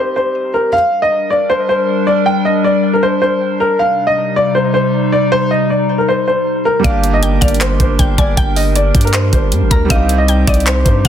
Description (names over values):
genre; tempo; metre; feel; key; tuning
hip hop, trap; 157 BPM; 4/4; half-time; G minor; A4 = 439 Hz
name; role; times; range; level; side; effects
dark grand piano; melody; 0.0-11.1 s; Bb4 to G5; -14 LUFS; left 1 dB; digital delay
felt-muted upright piano; accompaniment; 0.0-0.8, 6.8-11.1 s; G3 to G4; -21 LUFS; right 6 dB; none
warbly tape-like pad; sustained chords; 1.0-11.1 s; C3 to Bb4; -18 LUFS; left 1 dB; chorus, built-in reverb
mallet-like synth pluck; second line; 6.8-11.1 s; D5 to Bb5; -24 LUFS; left 4 dB; chorus, digital delay
long sustained 808-style bass; bass; 6.8-11.1 s; G1 to G2; -15 LUFS; equal; none
trap drum kit; drums; 6.8-11.1 s; handclaps, hi-hat, kick drum; -14 LUFS; equal; none
room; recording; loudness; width
little or no reverb; dense, heavily limited modern master; -11 LUFS; side -9 dB against mid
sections
0.7-11.1 A section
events
break 0.0-0.7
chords
0.0 Cm; 0.7 Gm; 3.8 Cm; 6.8 Gm; 9.9 Cm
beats
0.35 | 0.73 1.11 1.50 1.88 | 2.26 2.64 3.02 3.40 | 3.79 4.17 4.55 4.93 | 5.32 5.70 6.08 6.46 | 6.84 7.23 7.61 7.99 | 8.37 8.76 9.14 9.52 | 9.90 10.28 10.67 11.05